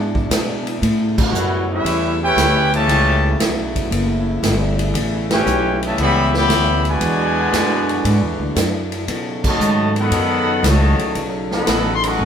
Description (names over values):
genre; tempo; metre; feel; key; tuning
jazz, big band swing; 116 BPM; 4/4; swing 69% on 8ths; unclear; A4 = 441 Hz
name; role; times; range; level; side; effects
clear trumpet section; melody; 0.0-12.2 s; B3 to C#6; -19 LUFS; left 1 dB; none
brilliant trombone section; second line; 0.0-12.2 s; B2 to G4; -23 LUFS; equal; none
warm trombone section; sustained chords; 0.0-12.2 s; C#3 to A4; -25 LUFS; right 1 dB; none
upright bass; bass; 0.0-12.2 s; F#1 to B2; -20 LUFS; equal; none
swinging big-band drum kit; drums; 0.1-12.1 s; crash cymbal, hi-hat, kick drum, ride cymbal, snare drum; -22 LUFS; equal; none
room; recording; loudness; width
wet stone room reverb, RT60 1.0 s; band playing live in one room; -15 LUFS; side -8 dB against mid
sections
0.0-12.2 A section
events
band accent 1.1, 5.2, 9.3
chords
0.0 E7; 0.8 A13; 7.0 E9; 9.1 B13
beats
0.30 | 0.82 1.33 1.85 2.37 | 2.88 3.40 3.91 4.43 | 4.95 5.46 5.98 6.50 | 7.01 7.53 8.05 8.57 | 9.08 9.60 10.12 10.64 | 11.16 11.68 12.20